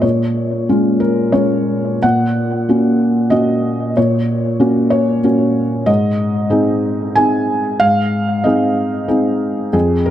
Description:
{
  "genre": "neoclassical minimalist piano",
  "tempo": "94 BPM",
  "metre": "3/4",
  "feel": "rubato",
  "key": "unclear",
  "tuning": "A4 = 440 Hz",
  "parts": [
    { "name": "felt-muted upright piano", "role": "solo", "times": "0.0-10.1 s", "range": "F2 to Ab5", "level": "-13 LUFS", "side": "equal", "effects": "analog delay" }
  ],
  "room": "moderate spring reverb, RT60 2.0 s, small room ambience",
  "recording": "dark, warm production",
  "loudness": "-13 LUFS",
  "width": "side -11 dB against mid",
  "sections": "0.0-10.1 A section",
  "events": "none",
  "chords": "0.0 Bbm7; 2.0 Gb/Bb; 5.9 Ab"
}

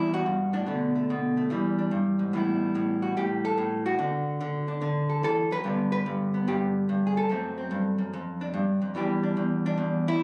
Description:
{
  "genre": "solo jazz",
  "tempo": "145 BPM",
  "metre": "4/4",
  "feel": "swing 66% on 8ths",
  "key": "E minor",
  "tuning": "A4 = 440 Hz",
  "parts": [
    { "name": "archtop guitar, miked and amplified", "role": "solo", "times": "0.0-10.2 s", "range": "E2 to B4", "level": "-27 LUFS", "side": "equal", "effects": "none" }
  ],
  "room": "light reverb",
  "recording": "recorded on a phone in the room, club reverb, compression",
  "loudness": "-27 LUFS",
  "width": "mono",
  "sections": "0.0-10.2 A section",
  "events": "none",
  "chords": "0.0 Em9; 0.7 Bm7; 1.5 E7#9; 2.3 Asus2; 4.0 D; 5.6 G; 7.3 F#dim; 8.1 Fsus2; 8.9 Em7"
}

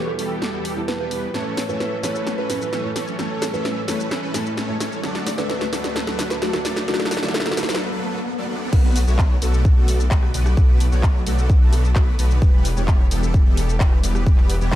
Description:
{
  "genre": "EDM, festival progressive house",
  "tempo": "130 BPM",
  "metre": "4/4",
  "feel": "straight",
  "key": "B minor",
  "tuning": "A4 = 441 Hz",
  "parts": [
    { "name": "kalimba", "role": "melody", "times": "0.0-7.5 s", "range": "F#4 to D5", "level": "-28 LUFS", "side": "equal", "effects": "tape echo" },
    { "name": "warm baby grand piano", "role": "accompaniment", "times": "0.0-7.6 s", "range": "A2 to D5", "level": "-31 LUFS", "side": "right 2 dB", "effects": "vintage 12-bit sampler grit, sidechain pumping, tape echo" },
    { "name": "bright chamber string section", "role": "sustained chords", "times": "0.0-14.8 s", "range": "D2 to D5", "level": "-35 LUFS", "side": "equal", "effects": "sidechain pumping" },
    { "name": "supersaw chords", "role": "riff", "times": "0.0-14.8 s", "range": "D3 to E5", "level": "-27 LUFS", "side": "equal", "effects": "ensemble chorus, sidechain pumping, low-pass filter, tape echo" },
    { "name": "riser", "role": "sound effects", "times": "0.5-8.7 s", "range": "none", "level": "-32 LUFS", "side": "equal", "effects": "none" },
    { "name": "big-room dance drum kit", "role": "drums", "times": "0.2-14.8 s", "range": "crash cymbal, handclaps, hi-hat, rim click, shaker, snare drum", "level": "-27 LUFS", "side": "equal", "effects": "none" },
    { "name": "wide detuned saw bass", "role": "bass", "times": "8.7-14.8 s", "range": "E1 to B1", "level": "-20 LUFS", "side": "equal", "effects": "chorus, sidechain pumping" },
    { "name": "electronic kick drum", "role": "drums", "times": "8.7-14.8 s", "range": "none", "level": "-16 LUFS", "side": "equal", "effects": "none" }
  ],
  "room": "light reverb, digital ambience",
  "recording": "dark, warm production",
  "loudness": "-18 LUFS",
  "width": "side -13 dB against mid",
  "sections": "0.0-8.7 A section; 8.7-14.8 B section",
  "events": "build-up 0.0-8.7; drum fill 0.0-7.8; riser 0.5-8.7; break 7.8-8.7; drop 8.7-14.8",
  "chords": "0.0 Em; 1.3 A; 5.0 D; 8.7 Bm7; 12.4 Em"
}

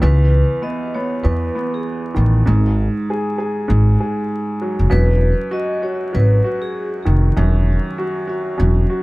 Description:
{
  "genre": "hip hop",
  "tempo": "98 BPM",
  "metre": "4/4",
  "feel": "swing 58% on 16ths",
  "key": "E major",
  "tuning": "A4 = 441 Hz",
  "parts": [
    { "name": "vibraphone with soft mallets", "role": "melody", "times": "0.0-6.9 s", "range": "G#4 to D#5", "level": "-24 LUFS", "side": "equal", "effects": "high-pass filter, low-pass filter, digital delay" },
    { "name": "dark baby grand piano", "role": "accompaniment", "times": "0.0-9.0 s", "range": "E2 to Ab4", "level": "-21 LUFS", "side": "right 1 dB", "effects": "high-pass filter, low-pass filter" },
    { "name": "upright bass", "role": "bass", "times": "0.0-8.8 s", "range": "E1 to E2", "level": "-14 LUFS", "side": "equal", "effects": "none" }
  ],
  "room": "light reverb",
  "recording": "vinyl crackle",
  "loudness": "-15 LUFS",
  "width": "side -21 dB against mid",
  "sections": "0.0-4.9 A section; 4.9-9.0 B section",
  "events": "none",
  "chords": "0.0 C#m9; 2.5 N.C.; 4.9 Emaj7sus2"
}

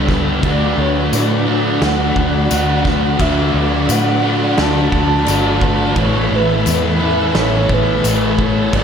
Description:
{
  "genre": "rock, shoegaze and dream pop",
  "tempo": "87 BPM",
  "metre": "4/4",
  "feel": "straight",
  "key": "D major",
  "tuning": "A4 = 442 Hz",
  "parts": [
    { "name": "string machine, violas", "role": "sustained chords", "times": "0.0-8.8 s", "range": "D4 to B5", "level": "-24 LUFS", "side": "equal", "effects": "ensemble chorus" },
    { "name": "fingerpicked twelve-string acoustic guitar", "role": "arpeggios", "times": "0.0-8.8 s", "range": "F#3 to A4", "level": "-27 LUFS", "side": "right 1 dB", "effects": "ensemble chorus, diffuse ambient delay" },
    { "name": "overdriven electric guitar", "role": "riff", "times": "0.0-8.8 s", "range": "G2 to A4", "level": "-20 LUFS", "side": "right 9 dB", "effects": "reverse reverb" },
    { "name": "thick fuzz guitar", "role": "riff", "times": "0.0-8.8 s", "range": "G2 to D4", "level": "-19 LUFS", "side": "left 8 dB", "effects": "distortion, lush chorus" },
    { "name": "vintage muted fingered electric bass", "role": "bass", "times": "0.0-8.8 s", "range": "G1 to A2", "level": "-19 LUFS", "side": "equal", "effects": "none" },
    { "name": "loose indie drum kit", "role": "drums", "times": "0.1-8.8 s", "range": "crash cymbal, kick drum, snare drum", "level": "-22 LUFS", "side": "equal", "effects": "none" },
    { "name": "mellow horn-like synth lead", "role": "melody", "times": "0.4-8.8 s", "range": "B4 to A5", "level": "-22 LUFS", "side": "right 2 dB", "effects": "chorus, phaser, diffuse ambient delay" },
    { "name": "tambourine", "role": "percussion", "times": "1.1-8.2 s", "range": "none", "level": "-26 LUFS", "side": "left 8 dB", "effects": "none" }
  ],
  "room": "moderate plate reverb, RT60 2.2 s",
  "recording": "dreamy mix soaked in reverb",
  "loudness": "-13 LUFS",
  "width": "side -7 dB against mid",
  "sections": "0.0-8.8 A section",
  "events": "none",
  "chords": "0.4 D6; 6.0 Asus2"
}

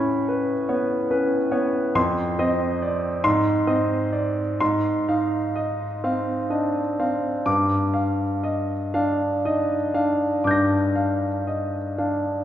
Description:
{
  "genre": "classical, impressionist solo piano",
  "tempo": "37-48 BPM (dotted quarters)",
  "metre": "6/8",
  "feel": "rubato",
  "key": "unclear",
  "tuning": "A4 = 440 Hz",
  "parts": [
    { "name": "clear concert grand piano", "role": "solo", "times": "0.0-12.4 s", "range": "F2 to Bb6", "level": "-20 LUFS", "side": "equal", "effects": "none" }
  ],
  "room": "wet concert hall reverb, RT60 2.4 s",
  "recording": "heard from further back in the room",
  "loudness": "-20 LUFS",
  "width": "side -11 dB against mid",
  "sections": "0.0-12.4 A section",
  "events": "none",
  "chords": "0.0 Aadd9; 2.0 F5; 3.2 Ab; 4.6 Ab6; 7.5 Gm7"
}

